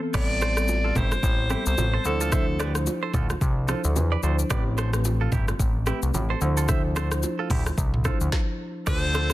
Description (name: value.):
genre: afrobeats.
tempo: 110 BPM.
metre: 4/4.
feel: swing 58% on 16ths.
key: unclear.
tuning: A4 = 440 Hz.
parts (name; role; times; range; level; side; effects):
marimba with soft mallets; accompaniment; 0.0-9.3 s; E3 to C5; -31 LUFS; left 1 dB; none.
direct-recorded clean electric guitar; riff; 0.1-9.3 s; E4 to E5; -34 LUFS; right 8 dB; tape echo.
fat analog bass; bass; 0.1-9.3 s; G1 to E2; -25 LUFS; equal; none.
afro-pop drum kit; drums; 0.1-9.3 s; crash cymbal, hi-hat, kick drum, rim click, shaker, snare drum, toms; -27 LUFS; equal; soft clipping on snare.
congas and bongos; percussion; 0.1-9.3 s; none; -34 LUFS; right 2 dB; none.
breathy alto saxophone; melody; 0.2-2.8, 8.9-9.3 s; A4 to D5; -28 LUFS; equal; tape echo.
warm horn section; second line; 8.9-9.3 s; F3 to A4; -37 LUFS; left 5 dB; none.
room: small room reverb.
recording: dense, heavily limited modern master.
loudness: -22 LUFS.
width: side -16 dB against mid.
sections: 0.1-8.9 A section.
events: stop 8.3-8.9.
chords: 0.1 Am9; 2.1 Dm9; 4.5 Am9; 6.4 Dm9.